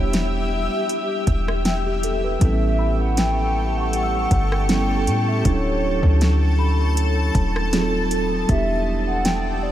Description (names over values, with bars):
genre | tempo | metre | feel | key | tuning
contemporary R&B | 79 BPM | 4/4 | swing 54% on 16ths | E dorian | A4 = 439 Hz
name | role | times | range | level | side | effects
hollow clarinet-like synth lead | melody | 0.0-9.7 s | C#5 to G5 | -28 LUFS | equal | chorus, analog delay
mellow tine electric piano | accompaniment | 0.0-9.7 s | F#3 to B4 | -26 LUFS | right 3 dB | medium stereo tremolo
granular cloud pad | sustained chords | 0.0-9.7 s | G4 to E6 | -26 LUFS | left 2 dB | built-in reverb
warm 808-style bass | bass | 0.0-9.7 s | D1 to A2 | -21 LUFS | equal | none
celesta | texture | 0.0-8.1 s | G5 to E6 | -36 LUFS | left 4 dB | lush chorus, analog delay
smooth R&B drum kit | drums | 0.1-9.4 s | hi-hat, kick drum, rim click, snare drum | -25 LUFS | equal | overdrive
room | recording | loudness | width
moderate huge ambient reverb, RT60 7.2 s | dreamy mix soaked in reverb | -18 LUFS | side -12 dB against mid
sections
0.0-9.7 A section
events
none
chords
0.0 Em7; 2.4 A7; 5.5 Dmaj7; 7.7 D#dim7; 8.5 Em7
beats
0.13 0.89 1.65 | 2.41 3.17 3.93 4.69 | 5.45 6.21 6.97 7.73 | 8.49 9.25